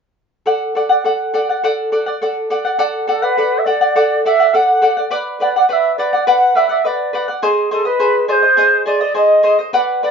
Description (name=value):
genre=andean folk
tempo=104 BPM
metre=2/4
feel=straight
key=unclear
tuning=A4 = 441 Hz
part: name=charango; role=accompaniment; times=0.5-10.1 s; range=G#4 to F#5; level=-16 LUFS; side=equal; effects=none
part: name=bright reedy large quena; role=melody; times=3.1-10.1 s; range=A4 to F#5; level=-14 LUFS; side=right 1 dB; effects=none
room=moderate studio reverb, RT60 0.5 s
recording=band playing live in one room, nothing above 7.5 kHz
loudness=-13 LUFS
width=side -6 dB against mid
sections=0.5-2.8 A section; 2.8-10.1 B section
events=none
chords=0.5 D; 5.1 Bm; 7.4 G#